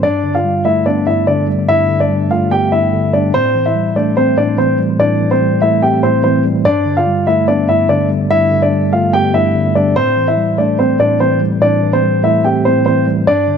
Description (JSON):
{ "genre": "hip hop", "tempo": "145 BPM", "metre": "4/4", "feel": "half-time", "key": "A minor", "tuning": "A4 = 439 Hz", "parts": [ { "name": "dark grand piano", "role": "melody", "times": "0.0-13.6 s", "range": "C4 to G5", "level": "-13 LUFS", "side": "left 1 dB", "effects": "none" }, { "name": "mellow tine electric piano", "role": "accompaniment", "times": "0.0-13.6 s", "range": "G2 to C4", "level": "-15 LUFS", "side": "right 1 dB", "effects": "medium stereo tremolo" } ], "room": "light reverb", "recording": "none", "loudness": "-11 LUFS", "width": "side -7 dB against mid", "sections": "0.0-3.3 A section; 3.3-13.6 B section", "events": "none", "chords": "0.0 Gadd9; 3.3 Am7; 6.7 Gadd9; 10.0 Am7" }